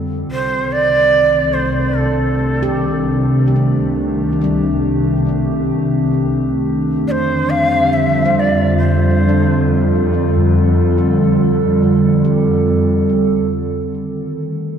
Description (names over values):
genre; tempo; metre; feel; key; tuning
ambient; free time; none; none; unclear; A4 = 440 Hz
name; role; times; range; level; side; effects
warbly tape-like pad; sustained chords; 0.0-14.8 s; D3 to A4; -16 LUFS; right 1 dB; chorus, built-in reverb
handpan; arpeggios; 0.0-14.8 s; G3 to C5; -27 LUFS; left 2 dB; ping-pong delay
warm studio double bass section; bass; 0.0-13.8 s; C2 to F2; -19 LUFS; left 1 dB; none
breathy shakuhachi; melody; 0.3-10.0 s; A4 to F5; -17 LUFS; right 2 dB; ping-pong delay
room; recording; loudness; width
wet cathedral reverb, RT60 5.1 s; in a vast, echoing space; -13 LUFS; side -8 dB against mid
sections
0.0-13.8 A section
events
fade-in on ambient pad 0.0-13.8; fade-out on handpan 0.0-13.8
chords
0.3 Cm6; 7.1 F; 13.8 Cm6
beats
free time